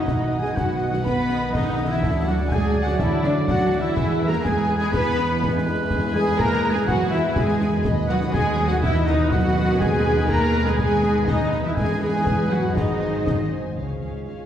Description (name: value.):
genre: cinematic, heroic adventure film score.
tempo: 123 BPM.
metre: 4/4.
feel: straight.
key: unclear.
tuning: A4 = 440 Hz.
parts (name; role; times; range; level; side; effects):
warm symphonic violin section; melody; 0.0-14.5 s; D5 to B5; -33 LUFS; left 3 dB; none.
clear oboe; second line; 0.0-13.5 s; D5 to B5; -35 LUFS; equal; none.
concert flute; second line; 0.0-13.5 s; D5 to B5; -32 LUFS; equal; none.
warm symphonic violin section; second line; 0.0-14.5 s; G#4 to D#6; -35 LUFS; left 2 dB; none.
rich symphonic viola section; accompaniment; 0.0-14.5 s; Db4 to B4; -26 LUFS; equal; none.
mellow French horn section; sustained chords; 0.0-14.5 s; Ab3 to B4; -30 LUFS; left 1 dB; none.
warm trombone section; sustained chords; 0.0-13.5 s; B2 to B3; -30 LUFS; equal; none.
concert harp; arpeggios; 0.0-14.5 s; G#2 to D#5; -33 LUFS; left 2 dB; none.
clear trumpet; stabs; 0.0-13.5 s; B4 to F#5; -32 LUFS; right 1 dB; none.
rich studio cello section; bass; 0.0-14.3 s; Db2 to B3; -26 LUFS; right 2 dB; none.
rich symphonic double bass section; bass; 0.0-14.0 s; G#1 to E2; -27 LUFS; right 1 dB; none.
concert snare drum, concert bass drum and clash cymbals; drums; 0.1-13.5 s; none; -27 LUFS; left 1 dB; none.
timpani; percussion; 13.8-14.5 s; Db3; -37 LUFS; left 2 dB; none.
room: wet scoring stage reverb, RT60 1.5 s.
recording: heard from further back in the room.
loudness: -19 LUFS.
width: side -10 dB against mid.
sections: 0.0-13.8 A section.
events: none.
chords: 0.1 B; 2.0 D; 4.0 E; 7.8 B/D#; 9.8 G#m/D#; 11.8 E; 12.8 G#7; 13.8 Db.